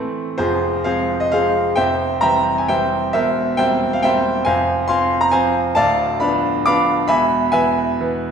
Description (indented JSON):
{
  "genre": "classical, romantic triple-time dance for piano with dotted rhythms",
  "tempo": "134 BPM",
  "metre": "3/4",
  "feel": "uneven beats, rubato",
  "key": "F minor",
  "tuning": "A4 = 440 Hz",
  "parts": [
    { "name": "clear concert grand piano", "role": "solo", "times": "0.0-8.3 s", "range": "D1 to D6", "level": "-15 LUFS", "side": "equal", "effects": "none" }
  ],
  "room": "wet scoring stage reverb, RT60 1.6 s",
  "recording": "minimal, uncompressed stereo recording",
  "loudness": "-15 LUFS",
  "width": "side -7 dB against mid",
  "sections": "0.4-8.3 A section",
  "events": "none",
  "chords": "0.4 Fm; 1.8 C/F; 3.1 C7/E; 4.5 Fm; 5.8 Bdim/D; 7.1 E"
}